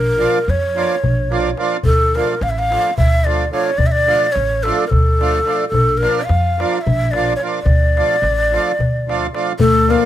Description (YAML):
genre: balkan folk, Balkan wedding band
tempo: 217 BPM (eighths)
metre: 7/8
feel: straight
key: D harmonic minor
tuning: A4 = 444 Hz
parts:
  - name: breathy bright low ney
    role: melody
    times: 0.0-10.1 s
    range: A4 to F5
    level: -17 LUFS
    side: equal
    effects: none
  - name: upright bass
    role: bass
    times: 0.0-9.9 s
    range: A1 to F2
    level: -18 LUFS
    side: equal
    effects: none
  - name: accordion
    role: accompaniment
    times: 0.2-10.1 s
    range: F3 to F4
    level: -20 LUFS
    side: right 5 dB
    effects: none
  - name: darbuka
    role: percussion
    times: 0.2-10.0 s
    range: none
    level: -21 LUFS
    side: left 1 dB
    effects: none
  - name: soft struck synth lead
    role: second line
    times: 9.6-10.1 s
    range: A3 to Bb3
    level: -16 LUFS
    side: left 8 dB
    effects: chorus
room: light reverb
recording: none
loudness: -14 LUFS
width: side -12 dB against mid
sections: 0.0-9.6 A section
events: none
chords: 0.0 Bb; 1.8 Dm; 5.7 Bb; 7.7 Dm